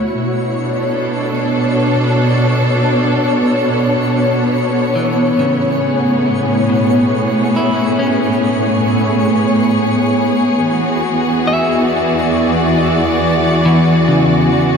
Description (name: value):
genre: ambient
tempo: 69 BPM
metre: 3/4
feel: straight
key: unclear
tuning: A4 = 438 Hz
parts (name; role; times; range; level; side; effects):
- rich studio string section; sustained chords; 0.0-14.8 s; A2 to D5; -13 LUFS; equal; shimmer reverb
- clean electric guitar; arpeggios; 0.0-14.8 s; B2 to E5; -19 LUFS; equal; tape echo, shimmer reverb
- clear studio cello section; bass; 0.0-14.8 s; D2 to B2; -22 LUFS; right 2 dB; none
- twinkling granular texture; texture; 0.0-14.8 s; C#6; -29 LUFS; right 2 dB; built-in reverb, shimmer reverb
room: wet huge ambient reverb, RT60 7.6 s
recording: in a vast, echoing space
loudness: -12 LUFS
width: side -6 dB against mid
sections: 0.0-14.8 A section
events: fade-in on clean electric guitar 0.0-14.8; fade-in on synth texture 0.0-14.8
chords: 0.2 Bm7; 5.4 Amaj9; 10.6 E7